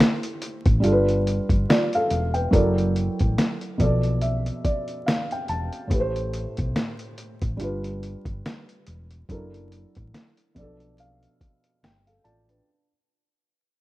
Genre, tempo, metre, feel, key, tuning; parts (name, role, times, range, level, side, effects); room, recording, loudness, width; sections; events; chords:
lo-fi hip hop; 71 BPM; 4/4; swing 56% on 16ths; A4 = 440 Hz
felt-muted upright piano; accompaniment; 0.0-12.9 s; A2 to A5; -25 LUFS; equal; low-pass filter
lo-fi sampler-style drum kit; drums; 0.0-12.7 s; hi-hat, kick drum, snare drum; -23 LUFS; equal; overdrive
hollow-body short-scale fingered electric bass; bass; 0.7-12.6 s; E1 to B1; -26 LUFS; equal
light reverb; rough home demo mix, vinyl crackle; -21 LUFS; side -17 dB against mid
0.0-12.7 A section
fade-out 0.0-12.7
0.0 Am7; 0.8 G7; 2.5 F#7alt; 3.8 Bm7b5; 5.9 Am7; 7.6 G7; 9.3 F#7alt; 10.6 Bm7b5